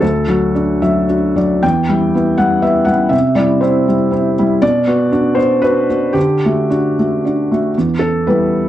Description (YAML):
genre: neoclassical minimalist piano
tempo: 106-123 BPM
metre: 3/4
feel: rubato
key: E minor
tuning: A4 = 440 Hz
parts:
  - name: felt-muted upright piano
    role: solo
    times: 0.0-8.7 s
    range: D2 to G5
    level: -12 LUFS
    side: equal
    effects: slapback echo
room: light reverb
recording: dry, close 1970s-style studio recording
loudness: -12 LUFS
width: side -12 dB against mid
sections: 0.0-7.8 A section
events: none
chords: 0.0 D; 1.6 Em; 3.1 C; 4.6 Bm; 6.2 D; 7.8 Em